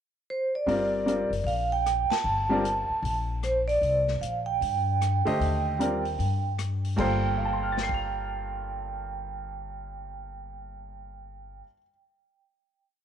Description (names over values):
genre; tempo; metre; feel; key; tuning
modal jazz; 152 BPM; 4/4; swing 64% on 8ths; G minor; A4 = 440 Hz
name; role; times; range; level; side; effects
vibraphone with medium mallets; melody; 0.3-11.6 s; C5 to A5; -28 LUFS; right 4 dB; tape echo
clear upright piano; accompaniment; 0.7-2.6, 5.3-11.9 s; G2 to F7; -29 LUFS; left 2 dB; none
upright bass; bass; 0.7-11.6 s; F#1 to G2; -31 LUFS; left 2 dB; none
vintage drum kit; drums; 0.7-8.0 s; crash cymbal, hi-hat, kick drum, ride cymbal, rim click, snare drum; -39 LUFS; left 9 dB; none
room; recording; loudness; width
moderate plate reverb, RT60 1.9 s, small room ambience; 1960s-style stereo; -25 LUFS; side -8 dB against mid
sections
0.0-0.7 pickup bar; 0.7-7.0 A section; 7.0-10.1 final chord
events
band accent 2.0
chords
0.0 N.C.; 0.7 Gm11; 3.8 Cm9; 7.0 Gm11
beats
0.27 | 0.67 1.06 1.46 1.85 | 2.25 2.64 3.03 3.43 | 3.82 4.21 4.61 5.00 | 5.40 5.79 6.18 6.58 | 6.97 7.37 7.76 8.16 | 8.55 8.95 9.34 9.74